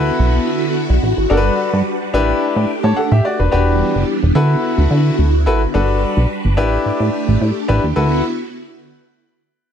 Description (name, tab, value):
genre	funk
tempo	108 BPM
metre	4/4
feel	straight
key	D major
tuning	A4 = 441 Hz
part	bright grand piano	accompaniment	0.0-8.2 s	D4 to A5	-18 LUFS	left 3 dB	none
part	phased string machine	sustained chords	0.0-8.2 s	D3 to B4	-20 LUFS	right 1 dB	ensemble chorus, phaser
part	plucky analog bass	bass	0.0-8.2 s	E1 to D3	-15 LUFS	right 1 dB	none
room	small room ambience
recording	none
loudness	-13 LUFS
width	side -8 dB against mid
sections	0.0-3.5 A section; 3.5-8.0 B section; 8.0-9.7 C section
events	none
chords	0.0 D69; 1.3 Gmaj7; 2.1 A9sus4; 3.5 Em7; 4.4 D69; 5.7 Gmaj7; 6.6 A9sus4; 8.0 D69